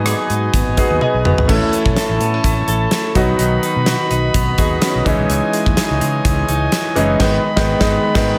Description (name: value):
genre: 1980s-style pop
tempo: 126 BPM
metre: 4/4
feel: swing 55% on 16ths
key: C# minor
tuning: A4 = 443 Hz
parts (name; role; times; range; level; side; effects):
- clear concert grand piano; accompaniment; 0.0-8.4 s; D#3 to D#5; -21 LUFS; equal; none
- bright brass ensemble; sustained chords; 0.0-8.4 s; E3 to B5; -24 LUFS; equal; none
- direct-recorded clean electric guitar; riff; 0.0-7.2 s; D#3 to A4; -26 LUFS; equal; lush chorus, delay
- fretless electric bass; bass; 0.0-8.3 s; F#1 to C#3; -22 LUFS; equal; none
- gated 80s drum kit; drums; 0.1-8.3 s; crash cymbal, hi-hat, kick drum, rim click, snare drum, toms; -21 LUFS; equal; none
room: light reverb, small room ambience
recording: none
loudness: -16 LUFS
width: mono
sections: 0.0-1.5 A section; 1.5-8.4 B section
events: drum fill 1.0-1.5, 8.2; band accent 7.2-8.4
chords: 0.0 G#m7; 1.5 A; 3.2 B; 5.1 C#madd9; 7.2 G#m